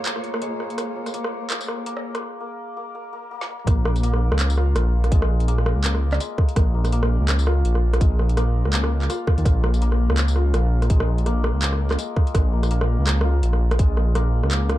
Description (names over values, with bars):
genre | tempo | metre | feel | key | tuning
half-time drum and bass | 166 BPM | 4/4 | swing 57% on 16ths, half-time | Bb minor | A4 = 440 Hz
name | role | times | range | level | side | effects
dark chamber cello section | sustained chords | 0.0-2.2 s | Bb3 to Db5 | -32 LUFS | right 2 dB | vintage 12-bit sampler grit, sidechain pumping
santur | arpeggios | 0.0-14.8 s | Ab3 to F4 | -30 LUFS | left 4 dB | ping-pong delay
drum and bass drum kit | drums | 0.1-14.8 s | handclaps, hi-hat, rim click, snare drum, tambourine, toms | -27 LUFS | right 1 dB | high-pass filter on hats, high-pass filter on snare, high-pass filter on perc, high-pass filter on toms, high-pass filter on room
dark detuned saw bass | bass | 3.7-14.8 s | Bb1 to Eb2 | -19 LUFS | equal | none
electronic kick drum | drums | 3.7-13.9 s | none | -18 LUFS | equal | none
room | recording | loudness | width
little or no reverb | dark, warm production, high-pass filter | -18 LUFS | side -15 dB against mid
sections
0.0-3.7 A section; 3.7-14.8 B section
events
build-up 0.0-3.7; filter sweep on santur 0.0-3.7; break 2.2-3.7; drum fill 3.4; drop 3.7-14.8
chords
0.0 Bbm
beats
0.06 0.42 | 0.78 1.14 1.50 1.86 | 2.23 2.59 2.95 3.31 | 3.67 4.03 4.39 4.75 | 5.12 5.48 5.84 6.20 | 6.56 6.92 7.29 7.65 | 8.01 8.37 8.73 9.09 | 9.45 9.81 10.18 10.54 | 10.90 11.26 11.62 11.98 | 12.35 12.71 13.07 13.43 | 13.79 14.15 14.51